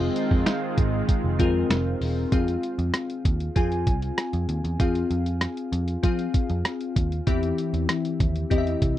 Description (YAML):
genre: 1980s-style pop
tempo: 97 BPM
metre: 4/4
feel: straight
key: F minor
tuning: A4 = 440 Hz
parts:
  - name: glassy digital keys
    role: accompaniment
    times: 0.0-9.0 s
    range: E3 to Ab5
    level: -27 LUFS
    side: left 3 dB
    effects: chorus
  - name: lush unison pad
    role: sustained chords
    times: 0.0-2.3 s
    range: Eb3 to F4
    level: -30 LUFS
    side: right 2 dB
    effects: chorus
  - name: vintage muted picked electric bass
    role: bass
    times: 0.0-9.0 s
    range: E1 to F3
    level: -27 LUFS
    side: right 1 dB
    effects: none
  - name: lo-fi sampler-style drum kit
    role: drums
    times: 0.2-9.0 s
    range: hi-hat, kick drum, rim click, snare drum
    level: -24 LUFS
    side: right 1 dB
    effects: none
room: little or no reverb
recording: dry, close 1970s-style studio recording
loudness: -22 LUFS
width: side -13 dB against mid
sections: 0.0-2.3 A section; 2.3-9.0 B section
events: none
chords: 0.0 Fm7; 2.3 Fm; 7.3 C